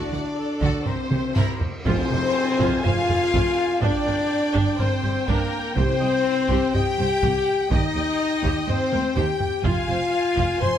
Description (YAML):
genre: cinematic, epic orchestral film score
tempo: 123 BPM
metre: 4/4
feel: straight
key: F dorian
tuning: A4 = 441 Hz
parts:
  - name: rich studio violin section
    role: melody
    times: 0.0-10.8 s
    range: Bb4 to C6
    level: -31 LUFS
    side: left 4 dB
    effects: none
  - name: rich symphonic violin section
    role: second line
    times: 0.0-10.8 s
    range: E4 to C6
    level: -32 LUFS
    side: left 2 dB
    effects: none
  - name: rich symphonic viola section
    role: accompaniment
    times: 0.0-10.8 s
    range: D4 to Ab5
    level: -30 LUFS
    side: right 2 dB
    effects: none
  - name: clear French horn section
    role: sustained chords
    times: 0.0-10.8 s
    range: Bb3 to C5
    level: -24 LUFS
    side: left 3 dB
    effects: none
  - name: rich symphonic cello section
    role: bass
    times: 0.1-10.7 s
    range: C2 to D3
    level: -29 LUFS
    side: right 4 dB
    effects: none
  - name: warm symphonic double bass section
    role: bass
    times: 0.1-10.7 s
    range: F1 to Eb2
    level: -30 LUFS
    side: right 5 dB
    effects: none
  - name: taiko ensemble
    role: drums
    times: 0.6-10.8 s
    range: none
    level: -26 LUFS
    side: right 1 dB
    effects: none
  - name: mellow hollow silver concert flute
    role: second line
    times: 1.8-10.8 s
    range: Bb4 to C6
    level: -31 LUFS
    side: left 2 dB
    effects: none
  - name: tam-tam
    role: percussion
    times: 1.9-3.8 s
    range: none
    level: -37 LUFS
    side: equal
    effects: none
  - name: timpani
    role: percussion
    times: 5.8-6.5 s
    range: C3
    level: -31 LUFS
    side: right 3 dB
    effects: none
room: moderate concert hall reverb, RT60 2.3 s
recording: close, detailed microphones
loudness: -20 LUFS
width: side -9 dB against mid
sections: 0.0-1.9 A section; 1.9-10.8 B section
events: drum fill 1.1-1.9, 8.9-9.6; band accent 1.9-2.3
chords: 0.0 D; 0.9 C7; 1.9 Fm; 3.8 Gm; 5.8 C5; 7.7 Eb; 9.6 Fm